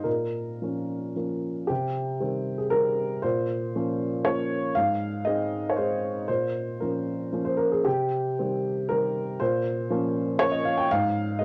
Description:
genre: neoclassical minimalist piano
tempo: 117 BPM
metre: 3/4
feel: rubato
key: Bb dorian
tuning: A4 = 440 Hz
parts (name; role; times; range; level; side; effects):
- dark upright piano; solo; 0.0-11.4 s; Ab2 to G5; -27 LUFS; equal; cassette tape
room: light reverb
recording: home recording on cassette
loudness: -27 LUFS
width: mono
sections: 0.0-1.7 A section; 1.7-11.4 A section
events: none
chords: 0.1 Bbm; 1.7 Cm; 3.2 Bbm; 4.8 Ab; 6.3 Bbm; 7.8 Cm; 9.4 Bbm; 10.9 N.C.

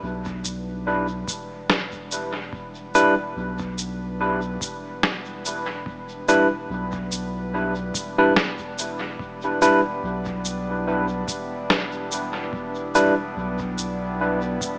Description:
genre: ambient dub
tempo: 72 BPM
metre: 4/4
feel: swing 56% on 16ths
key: E minor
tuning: A4 = 440 Hz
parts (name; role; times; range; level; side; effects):
- warbly tape-like pad; sustained chords; 0.0-14.8 s; G3 to B4; -33 LUFS; equal; chorus, built-in reverb, vintage 12-bit sampler grit
- soft dub sub bass; bass; 0.0-14.8 s; E1 to B1; -31 LUFS; equal; none
- electronic kick drum; drums; 0.3-14.8 s; none; -39 LUFS; equal; studio reverb
- electronic shaker and snare drum; drums; 0.4-14.8 s; none; -24 LUFS; equal; studio reverb, dub echo
- barky tine electric piano; stabs; 3.0-13.1 s; G3 to B4; -22 LUFS; equal; vintage 12-bit sampler grit, dub echo
room: light reverb, digital ambience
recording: small speaker sound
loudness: -21 LUFS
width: side -32 dB against mid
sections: 0.0-14.8 A section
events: fade-in on ambient pad 0.0-14.8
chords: 0.0 Em7

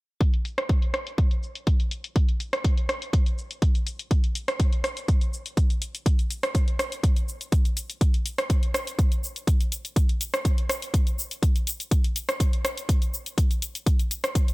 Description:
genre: house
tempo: 123 BPM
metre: 4/4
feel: straight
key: none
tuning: none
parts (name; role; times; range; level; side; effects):
- electronic kick drum; drums; 0.2-14.5 s; none; -22 LUFS; equal; none
- house drum kit; drums; 0.2-14.5 s; hi-hat, rim click, shaker; -30 LUFS; equal; sidechain pumping on hats, low-pass filter on hats, sidechain pumping on perc, low-pass filter on perc, low-pass filter on snare
room: little or no reverb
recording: none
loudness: -22 LUFS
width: side -22 dB against mid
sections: 0.2-14.5 A section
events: none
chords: none

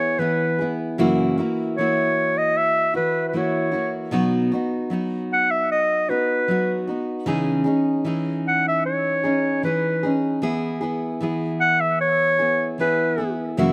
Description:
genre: acoustic folk duo or small band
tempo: 76 BPM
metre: 4/4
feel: straight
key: E major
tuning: A4 = 438 Hz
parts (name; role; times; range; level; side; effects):
- clear clarinet; melody; 0.0-13.3 s; B4 to F#5; -22 LUFS; equal; slapback echo
- picked steel-string acoustic guitar; accompaniment; 0.0-13.7 s; F#2 to G#4; -25 LUFS; equal; none
room: little or no reverb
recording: recorded outdoors, with no room sound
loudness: -22 LUFS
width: mono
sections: 0.0-13.7 A section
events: none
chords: 0.0 E; 1.0 F#7; 4.1 B; 7.3 C#madd9; 10.4 E

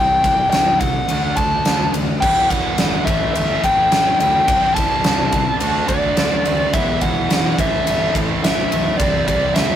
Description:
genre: quiet-loud alternative rock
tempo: 106 BPM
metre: 4/4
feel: straight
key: unclear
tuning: A4 = 436 Hz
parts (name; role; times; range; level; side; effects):
- fuzz lead guitar; melody; 0.0-9.8 s; D5 to A5; -18 LUFS; left 1 dB; distortion
- crunchy overdriven guitar; riff; 0.0-9.8 s; E2 to D4; -27 LUFS; right 1 dB; none
- thick fuzz guitar; riff; 0.0-9.8 s; A2 to F#4; -27 LUFS; left 4 dB; none
- fuzz picked electric bass; bass; 0.0-9.8 s; E1 to D2; -26 LUFS; equal; overdrive
- huge arena drum kit; drums; 0.2-9.7 s; crash cymbal, kick drum, ride cymbal, snare drum; -20 LUFS; equal; none
- cranked stack guitar; riff; 2.2-9.8 s; A2 to F#4; -25 LUFS; right 6 dB; overdrive
room: moderate studio reverb, RT60 0.6 s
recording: rough rehearsal-room recording, warm saturation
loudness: -15 LUFS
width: side -10 dB against mid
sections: 0.0-9.8 A section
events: none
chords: 0.0 C; 1.1 D; 2.2 Emadd9; 3.1 Am7; 4.5 C; 5.6 D7; 6.7 Emadd9; 7.6 Am7; 9.0 C

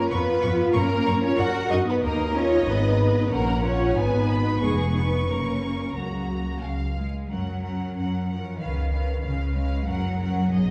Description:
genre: quick classical-period movement for string orchestra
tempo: 93 BPM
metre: 2/4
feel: straight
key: F# major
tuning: A4 = 440 Hz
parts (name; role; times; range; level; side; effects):
- dark studio violin section; second line; 0.0-10.7 s; F#4 to Gb5; -31 LUFS; equal; none
- dark symphonic viola section; accompaniment; 0.0-10.7 s; A#3 to Bb4; -31 LUFS; equal; none
- rich symphonic cello section; bass; 0.0-10.7 s; C#3 to Gb4; -31 LUFS; equal; none
- rich studio violin section; melody; 0.1-10.7 s; D#5 to Db6; -37 LUFS; equal; none
- clear symphonic double bass section; bass; 0.1-10.7 s; E#1 to Gb2; -28 LUFS; equal; none
room: wet recital hall reverb, RT60 1.4 s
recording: heard from further back in the room, vinyl crackle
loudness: -24 LUFS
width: mono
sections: 0.0-7.3 A section; 7.3-10.7 B section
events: none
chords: 0.1 Db7/F (rootless); 0.7 Gb; 2.0 D#5; 2.7 G#m; 3.3 F#/A#; 4.0 G#m; 4.6 C#7/E#; 5.3 F#; 6.0 F#/C#; 6.6 C#; 7.3 F#; 8.6 C#7; 9.9 F#

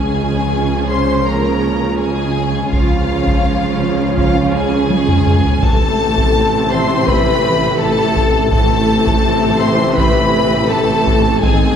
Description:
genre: cinematic, epic orchestral film score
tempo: 83 BPM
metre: 4/4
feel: straight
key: unclear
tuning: A4 = 441 Hz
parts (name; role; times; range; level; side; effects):
- warm symphonic violin section; melody; 0.0-11.8 s; F5 to C6; -20 LUFS; left 2 dB; none
- rich studio violin section; second line; 0.0-11.8 s; F4 to C5; -22 LUFS; left 2 dB; none
- warm symphonic viola section; accompaniment; 0.0-11.8 s; E3 to Db4; -23 LUFS; right 2 dB; none
- mellow French horn section; sustained chords; 0.0-11.8 s; F3 to C5; -22 LUFS; left 4 dB; none
- mellow trombone section; sustained chords; 0.0-11.8 s; C3 to Db4; -23 LUFS; right 3 dB; none
- dark symphonic cello section; bass; 0.0-11.8 s; Ab2 to Db3; -22 LUFS; right 3 dB; none
- mellow tuba; bass; 0.0-11.8 s; Ab1 to Db2; -22 LUFS; right 2 dB; none
- rich chamber double bass section; bass; 0.0-11.8 s; Ab1 to Db2; -24 LUFS; right 2 dB; none
- solo taiko drums; drums; 2.7-11.8 s; none; -18 LUFS; equal; none
room: wet scoring stage reverb, RT60 1.6 s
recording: heard from further back in the room, lossy compression artefacts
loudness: -12 LUFS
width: side -8 dB against mid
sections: 0.0-11.8 A section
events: drum fill 4.9-5.6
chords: 0.0 Db; 5.6 Am

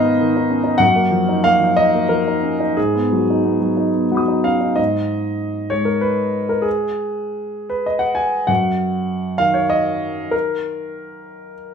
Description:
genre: neoclassical minimalist piano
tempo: 59-66 BPM (dotted quarters)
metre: 6/8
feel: rubato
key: unclear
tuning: A4 = 441 Hz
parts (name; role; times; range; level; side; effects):
- warm grand piano; solo; 0.0-11.7 s; F#2 to D#6; -16 LUFS; equal; none
room: moderate large studio reverb, RT60 0.8 s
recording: band playing live in one room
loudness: -16 LUFS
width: side -6 dB against mid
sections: 0.0-4.8 A section; 4.8-11.7 B section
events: none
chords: 0.0 G#m; 0.8 D#madd9/F#; 2.8 G#m7; 4.8 N.C.; 8.5 D#m/F#

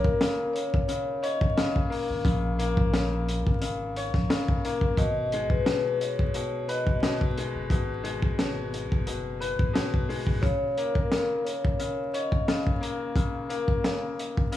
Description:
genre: hip hop, boom-bap hip-hop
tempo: 88 BPM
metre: 4/4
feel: swing 54% on 16ths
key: G# minor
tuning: A4 = 443 Hz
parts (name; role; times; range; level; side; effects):
- vibraphone with soft mallets; melody; 0.0-12.6 s; A#4 to D#5; -30 LUFS; left 2 dB; high-pass filter, low-pass filter, digital delay
- bright upright piano; accompaniment; 0.0-14.6 s; B2 to C#5; -30 LUFS; left 4 dB; high-pass filter, low-pass filter
- crunchy breakbeat drum kit; drums; 0.0-14.6 s; hi-hat, kick drum, snare drum; -27 LUFS; equal; none
- soft dub sub bass; bass; 1.4-10.4 s; F#1 to A#1; -31 LUFS; equal; none
room: light reverb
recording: vinyl crackle, small room ambience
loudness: -24 LUFS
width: side -13 dB against mid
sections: 0.0-5.0 A section; 5.0-14.6 B section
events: none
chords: 0.0 A#m7; 5.0 G#m7; 10.4 A#m

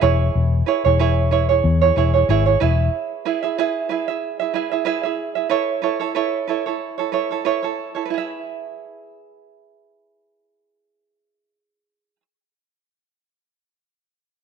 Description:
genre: pop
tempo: 93 BPM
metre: 4/4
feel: swing 55% on 16ths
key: E major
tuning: A4 = 440 Hz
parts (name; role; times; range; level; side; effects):
- tenor ukulele; accompaniment; 0.0-12.2 s; E4 to E5; -20 LUFS; right 9 dB; none
- vintage muted fingered electric bass; bass; 0.0-2.9 s; E1 to E2; -17 LUFS; left 3 dB; none
room: light reverb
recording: 1960s-style stereo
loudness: -18 LUFS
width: side -6 dB against mid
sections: 0.0-8.1 A section; 8.1-10.7 B section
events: none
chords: 0.0 C#m7/E; 2.6 E; 5.5 Aadd9; 8.1 E

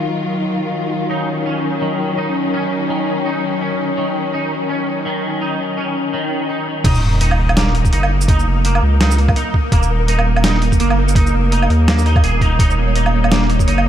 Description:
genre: half-time drum and bass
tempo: 167 BPM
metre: 4/4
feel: swing 58% on 16ths, half-time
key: Eb minor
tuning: A4 = 442 Hz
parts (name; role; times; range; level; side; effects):
- rich studio string section; sustained chords; 0.0-6.8 s; Eb3 to F4; -20 LUFS; left 2 dB; vintage 12-bit sampler grit, sidechain pumping
- twangy electric guitar; arpeggios; 1.1-13.8 s; Eb3 to Ab4; -22 LUFS; equal; ensemble chorus, ping-pong delay
- saturated sub bass; bass; 6.8-13.9 s; Eb1 to Eb2; -15 LUFS; equal; none
- boom bap sampler-style drum kit; drums; 6.8-13.8 s; crash cymbal, hi-hat, shaker, snare drum, woodblock; -21 LUFS; right 1 dB; small room reverb
- electronic kick drum; drums; 6.8-13.7 s; none; -15 LUFS; equal; small room reverb
- sub drop; sound effects; 6.8-8.3 s; none; -23 LUFS; equal; none
- pulsing gated texture; texture; 6.8-13.9 s; Bb3 to Db5; -23 LUFS; right 2 dB; chorus, built-in reverb
room: moderate huge ambient reverb, RT60 8.0 s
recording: dreamy mix soaked in reverb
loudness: -14 LUFS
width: side -10 dB against mid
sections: 0.0-6.8 A section; 6.8-13.9 B section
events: drop 6.8-13.9; impact 6.8-8.3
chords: 0.0 Ebmadd9; 6.8 Ebm

